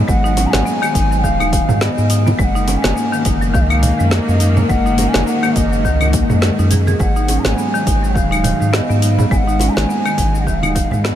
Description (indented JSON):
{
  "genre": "organic downtempo",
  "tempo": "104 BPM",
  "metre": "4/4",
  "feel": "swing 57% on 16ths",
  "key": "G# dorian",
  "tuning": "A4 = 438 Hz",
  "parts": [
    { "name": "dark chamber string section", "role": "sustained chords", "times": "0.0-11.2 s", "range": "G#2 to A#3", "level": "-22 LUFS", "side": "equal", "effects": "sidechain pumping" },
    { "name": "marimba with medium hard mallets", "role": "arpeggios", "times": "0.0-11.2 s", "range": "D#3 to G#4", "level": "-21 LUFS", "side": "left 1 dB", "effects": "ping-pong delay" },
    { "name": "warm sub bass", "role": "bass", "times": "0.0-11.1 s", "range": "D#1 to G#2", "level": "-17 LUFS", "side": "equal", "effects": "sidechain pumping" },
    { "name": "bright bass bansuri", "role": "melody", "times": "0.1-11.2 s", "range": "D#5 to A#5", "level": "-22 LUFS", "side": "equal", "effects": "ping-pong delay" },
    { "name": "deep house drum kit", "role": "drums", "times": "0.1-11.2 s", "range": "claves, hi-hat, shaker, snare drum", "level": "-22 LUFS", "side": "left 1 dB", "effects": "none" },
    { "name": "electronic kick drum", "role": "drums", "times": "0.1-10.9 s", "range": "none", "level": "-19 LUFS", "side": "equal", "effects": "none" },
    { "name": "congas", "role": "percussion", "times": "0.1-11.0 s", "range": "none", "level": "-25 LUFS", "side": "right 2 dB", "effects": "none" }
  ],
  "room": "moderate huge ambient reverb, RT60 7.3 s",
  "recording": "dreamy mix soaked in reverb",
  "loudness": "-13 LUFS",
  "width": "side -11 dB against mid",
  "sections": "0.0-11.2 A section",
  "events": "fade-out 10.1-11.2",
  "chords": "0.0 G#m7; 2.4 F#69; 7.0 G#m7",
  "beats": "| 0.08 0.66 1.24 1.81 | 2.39 2.97 3.54 4.12 | 4.70 5.27 5.85 6.43 | 7.00 7.58 8.16 8.73 | 9.31 9.89 10.47 11.04"
}